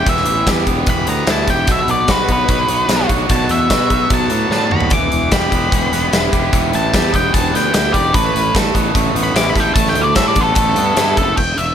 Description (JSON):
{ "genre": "classic rock", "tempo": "148 BPM", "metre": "4/4", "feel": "straight", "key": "E minor", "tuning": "A4 = 440 Hz", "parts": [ { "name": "octave-fuzz lead guitar", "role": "melody", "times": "0.0-11.7 s", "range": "A4 to D6", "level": "-18 LUFS", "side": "equal", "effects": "distortion" }, { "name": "biting overdriven guitar", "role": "riff", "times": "0.0-11.4 s", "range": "B2 to A4", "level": "-18 LUFS", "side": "equal", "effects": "none" }, { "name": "fuzz fingered electric bass", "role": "bass", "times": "0.0-11.7 s", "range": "E1 to B2", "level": "-20 LUFS", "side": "equal", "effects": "overdrive" }, { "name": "big rock drum kit", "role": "drums", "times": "0.1-11.7 s", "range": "crash cymbal, hi-hat, kick drum, snare drum, toms", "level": "-17 LUFS", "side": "equal", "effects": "none" } ], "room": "little or no reverb", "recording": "none", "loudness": "-12 LUFS", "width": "side -9 dB against mid", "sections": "0.0-11.4 A section", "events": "lead electric guitar solo 0.0-11.4; drum fill 4.5-4.9", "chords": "0.0 Em; 1.7 Bm; 4.9 Em; 8.1 Asus2" }